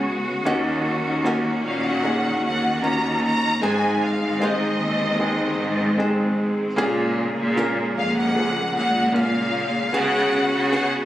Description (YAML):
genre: pop ballad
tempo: 76 BPM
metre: 4/4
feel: straight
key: Eb minor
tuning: A4 = 440 Hz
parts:
  - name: clear baby grand piano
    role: accompaniment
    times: 0.0-11.1 s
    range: Ab2 to Bb4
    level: -26 LUFS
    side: equal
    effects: none
  - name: clear symphonic string section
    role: sustained chords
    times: 0.0-11.1 s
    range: Db3 to Gb4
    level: -26 LUFS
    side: equal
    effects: none
  - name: bright symphonic cello section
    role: bass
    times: 0.0-11.1 s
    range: Eb2 to Db3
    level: -25 LUFS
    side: equal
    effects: none
  - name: flamenco guitar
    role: arpeggios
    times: 0.5-11.1 s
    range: Ab2 to C5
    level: -30 LUFS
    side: left 1 dB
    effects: none
  - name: warm studio violin section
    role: melody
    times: 1.7-10.9 s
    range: Eb5 to Bb5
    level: -24 LUFS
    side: equal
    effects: ping-pong delay
room: light reverb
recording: recorded on a phone in the room, studio reverb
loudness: -19 LUFS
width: side -13 dB against mid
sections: 0.0-11.1 A section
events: none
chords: 0.5 Ebm7; 3.6 Ab; 6.8 Bbm7; 9.9 Db7sus4